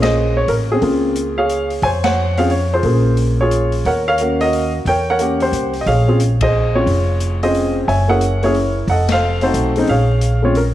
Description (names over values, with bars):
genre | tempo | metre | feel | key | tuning
jazz piano trio | 179 BPM | 3/4 | swing 64% on 8ths | Bb minor | A4 = 440 Hz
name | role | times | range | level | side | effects
warm baby grand piano | melody | 0.0-10.6 s | Db3 to Ab5 | -16 LUFS | equal | none
upright bass | bass | 0.0-10.7 s | F1 to F2 | -18 LUFS | equal | none
open jazz drum kit | drums | 0.0-10.7 s | hi-hat, kick drum, ride cymbal, snare drum | -28 LUFS | left 4 dB | none
room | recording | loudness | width
light reverb, small room ambience | 1960s-style stereo | -14 LUFS | side -13 dB against mid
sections
0.0-10.7 A section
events
band accent 0.0, 2.0, 6.4, 9.0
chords
0.0 Bbm9; 3.8 Ebm9; 4.8 Edim7; 5.9 Bbm9; 7.9 Gb7; 8.9 F7b9; 9.9 Bbm7